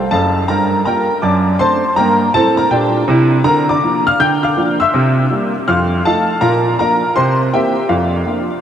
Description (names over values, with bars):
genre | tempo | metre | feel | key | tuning
jazz, stride piano | 162 BPM | 4/4 | swing 64% on 8ths | Bb major from 3.4 s | A4 = 441 Hz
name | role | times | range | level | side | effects
warm upright piano | solo | 0.0-8.6 s | Gb1 to G6 | -12 LUFS | equal | analog chorus, analog delay
room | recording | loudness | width
wet huge ambient reverb, RT60 4.9 s | dreamy mix soaked in reverb | -12 LUFS | side -9 dB against mid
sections
0.0-8.6 A section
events
none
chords
0.5 Gm7; 1.2 D7/F#; 2.0 Gm; 3.4 Bb/D; 4.9 C7; 5.7 F7; 6.4 Bb; 7.2 C7; 7.9 Bb/F